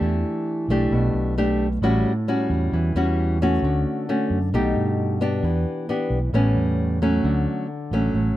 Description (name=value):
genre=bossa nova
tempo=133 BPM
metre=4/4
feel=straight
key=D major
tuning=A4 = 440 Hz
part: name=nylon-string guitar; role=accompaniment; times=0.0-8.4 s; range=A2 to G4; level=-21 LUFS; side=equal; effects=none
part: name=fingered electric bass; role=bass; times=0.0-8.4 s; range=A1 to G2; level=-23 LUFS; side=right 1 dB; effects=none
room=little or no reverb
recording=dark, warm production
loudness=-20 LUFS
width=side -14 dB against mid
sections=0.0-7.2 A section; 7.2-8.4 B section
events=none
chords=0.0 Em7; 1.8 A6; 3.6 Dmaj7; 4.5 B7alt; 5.4 Em7; 6.3 A9; 7.2 Dmaj7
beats=| 0.01 0.47 0.92 1.37 | 1.82 2.27 2.72 3.18 | 3.63 4.08 4.53 4.98 | 5.43 5.89 6.34 6.79 | 7.24 7.69 8.15